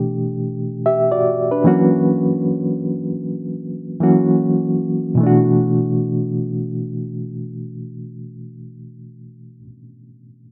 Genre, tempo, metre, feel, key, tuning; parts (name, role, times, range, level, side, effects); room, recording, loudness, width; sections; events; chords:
R&B; 76 BPM; 4/4; swing 63% on 16ths; A4 = 439 Hz
bright reed electric piano; accompaniment; 0.0-10.5 s; B2 to E5; -19 LUFS; equal; fast tremolo
moderate echo chamber reverb, RT60 2.1 s; -18 LUFS; mono
0.0-5.2 A section; 5.2-8.3 B section
0.0 Em7; 1.6 F#7; 5.2 E9sus4